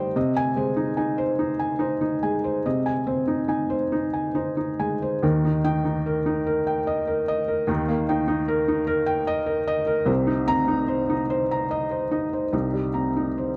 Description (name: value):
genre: neoclassical minimalist piano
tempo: 46-51 BPM (dotted quarters)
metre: 6/8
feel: rubato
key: unclear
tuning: A4 = 439 Hz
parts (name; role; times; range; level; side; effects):
- felt-muted upright piano; solo; 0.0-13.6 s; C2 to Bb5; -24 LUFS; equal; none
room: light reverb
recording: close, detailed microphones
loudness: -24 LUFS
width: mono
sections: 0.0-5.2 A section; 5.2-13.6 B section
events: none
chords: 0.2 Ab/C; 5.2 Eb; 10.1 Cm7